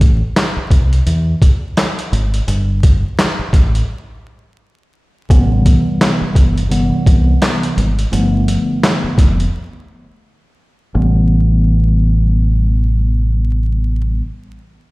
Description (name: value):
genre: hip hop, boom-bap hip-hop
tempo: 85 BPM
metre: 4/4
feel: swing 58% on 16ths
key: A minor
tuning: A4 = 435 Hz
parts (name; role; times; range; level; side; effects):
- deep dub fingered electric bass; bass; 0.0-14.2 s; F1 to E2; -14 LUFS; equal; none
- boom bap sampler-style drum kit; drums; 0.0-9.5 s; handclaps, hi-hat, kick drum, snare drum; -13 LUFS; equal; none
- mellow tine electric piano; accompaniment; 5.3-14.2 s; G2 to B3; -18 LUFS; equal; medium stereo tremolo, cassette tape, high-pass filter, low-pass filter
room: light reverb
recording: played on a big sound system in a bare room, stone room reverb, vinyl crackle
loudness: -12 LUFS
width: side -22 dB against mid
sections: 0.0-5.3 A section; 5.3-10.9 B section; 10.9-13.8 C section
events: break 0.0-5.3, 9.5-10.9; filter sweep on tine electric piano 5.3-10.9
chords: 0.0 Am; 2.5 Gsus2; 5.3 Am7; 8.1 G7; 10.9 Am7